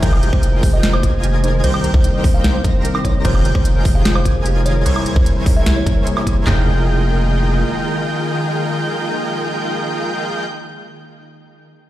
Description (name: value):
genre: future bass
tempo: 149 BPM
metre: 4/4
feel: half-time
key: F minor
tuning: A4 = 437 Hz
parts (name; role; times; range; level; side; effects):
- kalimba; melody; 0.0-11.2 s; Ab4 to F5; -26 LUFS; equal; vintage 12-bit sampler grit, sidechain pumping, tape echo
- shimmering ambient pad; sustained chords; 0.0-10.4 s; Db3 to G5; -26 LUFS; left 1 dB; chorus, built-in reverb, sidechain pumping
- airy dreamy lead; arpeggios; 0.0-10.5 s; G6 to Bb6; -29 LUFS; left 1 dB; chorus, cassette tape, sidechain pumping, tape echo
- soft round pluck; arpeggios; 0.0-6.7 s; Eb4 to G5; -31 LUFS; right 3 dB; chorus, sidechain pumping, tape echo
- dense compressed supersaw; riff; 0.0-10.5 s; Eb4 to Bb5; -23 LUFS; right 1 dB; sidechain pumping, tape echo
- saturated sub bass; bass; 0.0-7.6 s; F1 to C2; -17 LUFS; equal; tube saturation, sidechain pumping
- big-room dance drum kit; drums; 0.0-6.6 s; handclaps, kick drum, snare drum, toms; -16 LUFS; equal; none
- trap drum kit; drums; 0.0-6.3 s; crash cymbal, hi-hat, snare drum, woodblock; -24 LUFS; equal; overdrive
room: light reverb, digital ambience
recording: played on a big sound system in a bare room, large studio reverb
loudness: -14 LUFS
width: side -14 dB against mid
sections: 0.0-6.5 A section; 6.5-9.7 B section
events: drop 0.0-6.5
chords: 0.0 Fm11; 1.6 Cm7; 3.2 Fm11; 4.9 C7b9b13; 6.5 Fm11